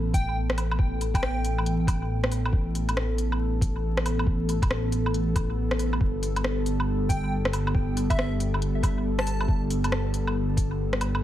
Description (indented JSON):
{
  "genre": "future garage",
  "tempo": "138 BPM",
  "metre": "4/4",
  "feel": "swing 63% on 16ths",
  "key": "unclear",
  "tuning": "A4 = 441 Hz",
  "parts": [
    { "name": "warbly tape-like pad", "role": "sustained chords", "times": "0.0-11.2 s", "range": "E3 to A4", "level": "-31 LUFS", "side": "equal", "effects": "chorus, built-in reverb, vintage 12-bit sampler grit, sidechain pumping" },
    { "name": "dark detuned saw bass", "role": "bass", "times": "0.0-11.2 s", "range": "G1 to A1", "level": "-27 LUFS", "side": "equal", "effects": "sidechain pumping" },
    { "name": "plucky unison lead", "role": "melody", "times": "0.1-1.7, 7.1-9.6 s", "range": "E5 to A5", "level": "-36 LUFS", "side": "equal", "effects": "tape echo" },
    { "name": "electronic kick drum", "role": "drums", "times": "0.1-10.7 s", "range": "none", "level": "-25 LUFS", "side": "equal", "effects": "studio reverb" },
    { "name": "organic electronic drum kit", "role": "drums", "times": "0.1-11.2 s", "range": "hi-hat, rim click, woodblock", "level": "-30 LUFS", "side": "equal", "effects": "overdrive, studio reverb, analog delay" }
  ],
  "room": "digital ambience",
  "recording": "echo-heavy mix, vinyl crackle, faint mains hum",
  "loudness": "-23 LUFS",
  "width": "side -12 dB against mid",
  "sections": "0.0-11.2 A section",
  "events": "none",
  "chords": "0.0 Asus2; 6.0 Gadd9"
}